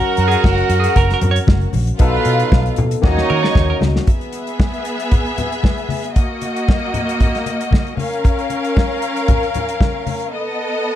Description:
disco; 115 BPM; 4/4; straight; A4 = 440 Hz
clear studio string section; second line; 0.0-11.0 s; Bb3 to Gb5; -21 LUFS; left 1 dB
barky tine electric piano; accompaniment; 0.0-4.1 s; B2 to Bb4; -23 LUFS; left 6 dB; analog chorus
clean electric guitar; accompaniment; 0.0-3.8 s; Gb4 to Db5; -23 LUFS; right 8 dB; lush chorus
clear horn section; stabs; 0.0-3.8 s; Gb3 to Db5; -22 LUFS; right 7 dB
vintage muted fingered electric bass; bass; 0.2-4.0 s; Gb1 to Eb3; -18 LUFS; equal
damped 70s drum kit; drums; 0.2-10.3 s; hi-hat, kick drum, snare drum; -16 LUFS; equal
congas; percussion; 0.4-10.2 s; -26 LUFS; left 4 dB
light reverb, studio reverb; dark, warm production; -14 LUFS; side -12 dB against mid
0.0-4.1 A section; 4.1-11.0 B section
clean electric guitar solo 0.0-4.1; drum fill 3.0-4.1; break 10.3-11.0
0.0 Gb; 2.0 B7; 3.0 Ebm7; 4.1 E; 6.2 Ebm; 8.0 Db6; 10.3 B7

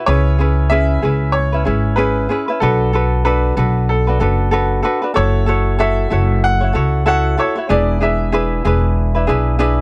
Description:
acoustic pop; 94 BPM; 4/4; swing 60% on 16ths; F# minor; A4 = 438 Hz
ukulele; accompaniment; 0.0-9.8 s; C#4 to C#5; -21 LUFS; equal
bright upright piano; melody; 0.1-9.2 s; A4 to F#5; -23 LUFS; equal
upright bass; bass; 0.1-9.8 s; E1 to C#2; -18 LUFS; equal
little or no reverb; cassette tape; -16 LUFS; mono
0.0-9.8 A section
0.1 C#m7; 2.6 Bm7; 5.2 F#m7; 7.7 E7

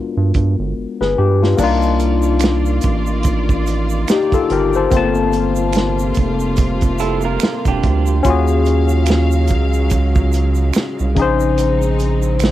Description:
R&B, neo-soul; 72 BPM; 4/4; swing 58% on 16ths; A4 = 436 Hz
barky tine electric piano; accompaniment; 0.0-12.5 s; Db3 to A5; -18 LUFS; left 6 dB; analog chorus, cassette tape
round analog bass; bass; 0.2-12.5 s; E1 to G2; -17 LUFS; right 2 dB
warm soul drum kit; drums; 0.3-12.5 s; crash cymbal, hi-hat, kick drum, snare drum; -18 LUFS; right 2 dB
warm studio string section; sustained chords; 1.6-12.5 s; C3 to F5; -26 LUFS; right 1 dB; cassette tape
egg shaker and finger snaps; percussion; 1.6-12.5 s; -31 LUFS; right 13 dB
electric guitar through a small old amp; second line; 7.0-8.2 s; D4 to Bb4; -21 LUFS; right 9 dB; cassette tape
little or no reverb; home recording on cassette; -14 LUFS; side -13 dB against mid
0.0-1.6 A section; 1.6-12.5 B section
drum fill 0.8-1.6
0.0 G7b9; 1.6 Cm11; 4.9 Gm11; 8.2 Ebm11; 11.2 Bbm11

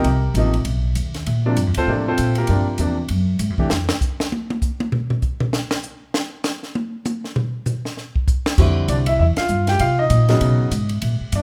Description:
jazz piano trio; 197 BPM; 4/4; swing 60% on 8ths; F major; A4 = 440 Hz
clear baby grand piano; melody; 0.0-3.7, 8.6-11.4 s; C3 to G5; -23 LUFS; equal
upright bass; bass; 0.0-3.9, 8.6-11.4 s; A1 to C3; -21 LUFS; equal
compact cocktail drum kit; drums; 0.0-11.4 s; crash cymbal, hi-hat, kick drum, ride cymbal, snare drum, toms; -25 LUFS; equal
moderate large studio reverb, RT60 1.3 s; -20 LUFS; mono
0.0-8.6 A section; 8.6-11.4 B section
grand piano solo 0.0-8.6; drum solo 3.7-8.6; band accent 9.3
0.1 Cm7; 0.7 B; 1.3 Bbmaj9; 2.5 Gm7; 3.1 Gbsus2; 3.7 N.C.; 8.6 Fsus2; 9.8 Cm7; 10.4 Badd9

